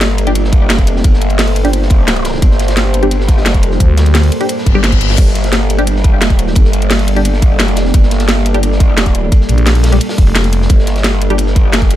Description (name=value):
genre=dark technical drum and bass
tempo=174 BPM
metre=4/4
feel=straight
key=G minor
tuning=A4 = 440 Hz
part: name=deep dark ambient pad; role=sustained chords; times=0.0-12.0 s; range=G3 to G5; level=-19 LUFS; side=equal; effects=chorus, built-in reverb, sidechain pumping
part: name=growl bass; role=bass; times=0.0-12.0 s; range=G1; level=-14 LUFS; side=equal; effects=chorus, overdrive, sidechain pumping
part: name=crunchy breakbeat drum kit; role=drums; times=0.0-12.0 s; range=hi-hat, ride cymbal, snare drum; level=-26 LUFS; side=equal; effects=high-pass filter on cymbals, high-pass filter on hats, high-pass filter on snare, high-pass filter on room
part: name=drum and bass drum kit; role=drums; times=0.0-12.0 s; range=crash cymbal, hi-hat, snare drum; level=-16 LUFS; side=equal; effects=overdrive
part: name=filtered dub chord stab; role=stabs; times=0.3-11.4 s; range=G3 to G4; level=-19 LUFS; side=left 2 dB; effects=phaser, ping-pong delay
part: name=electronic kick drum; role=drums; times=0.5-11.9 s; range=none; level=-9 LUFS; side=equal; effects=none
part: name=growling FM bass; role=bass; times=3.8-5.2, 9.5-10.7 s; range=F1 to D2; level=-10 LUFS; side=equal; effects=none
part: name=reverse cymbal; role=sound effects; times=4.6-5.2 s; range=none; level=-22 LUFS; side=left 7 dB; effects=none
room=little or no reverb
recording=none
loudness=-9 LUFS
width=side -13 dB against mid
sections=0.0-12.0 A section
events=reverse cymbal 4.6-5.2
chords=0.0 Gmadd9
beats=0.01 0.35 0.70 | 1.04 1.39 1.73 2.08 | 2.42 2.77 3.11 3.46 | 3.80 4.15 4.49 4.84 | 5.18 5.53 5.87 6.22 | 6.56 6.91 7.25 7.59 | 7.94 8.29 8.63 8.97 | 9.32 9.66 10.01 10.35 | 10.70 11.04 11.39 11.73